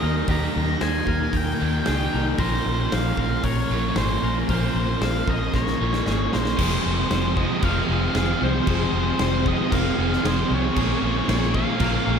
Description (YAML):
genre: rock, shoegaze and dream pop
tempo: 114 BPM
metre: 4/4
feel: straight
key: Bb dorian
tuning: A4 = 439 Hz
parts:
  - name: octave-fuzz lead guitar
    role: melody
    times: 0.0-12.2 s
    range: C5 to Bb5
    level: -28 LUFS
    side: left 1 dB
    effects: distortion, analog delay
  - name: semi-hollow electric guitar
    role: arpeggios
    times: 0.0-12.2 s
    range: G4 to C5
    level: -33 LUFS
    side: left 5 dB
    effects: lush chorus, analog delay
  - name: overdriven electric guitar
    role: riff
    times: 0.0-12.2 s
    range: F2 to Eb4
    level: -27 LUFS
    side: right 8 dB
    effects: reverse reverb
  - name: thick fuzz guitar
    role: riff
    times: 0.0-12.2 s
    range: F2 to Eb4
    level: -28 LUFS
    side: left 6 dB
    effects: distortion, lush chorus
  - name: vintage muted fingered electric bass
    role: bass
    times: 0.0-12.2 s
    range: F1 to Eb2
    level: -26 LUFS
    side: equal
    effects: none
  - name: big rock drum kit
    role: drums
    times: 0.3-11.9 s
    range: crash cymbal, hi-hat, kick drum, snare drum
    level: -28 LUFS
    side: equal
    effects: none
  - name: granular cloud pad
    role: sustained chords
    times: 8.2-12.2 s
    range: Db3 to Ab4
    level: -31 LUFS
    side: equal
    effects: none
  - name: tight distorted guitar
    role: riff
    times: 6.6-12.2 s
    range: F2 to Bb3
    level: -30 LUFS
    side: right 1 dB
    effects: distortion
room: wet cathedral reverb, RT60 5.8 s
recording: dreamy mix soaked in reverb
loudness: -20 LUFS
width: side -7 dB against mid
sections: 0.0-6.6 A section; 6.6-12.2 B section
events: drum fill 5.5-6.6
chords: 0.0 Eb6; 2.4 Bbmadd9; 6.6 Fm7; 10.8 Bbm7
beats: | 0.29 0.81 1.34 1.87 | 2.39 2.92 3.44 3.97 | 4.50 5.02 5.54 6.07 | 6.59 7.12 7.64 8.16 | 8.69 9.21 9.73 10.25 | 10.78 11.30 11.82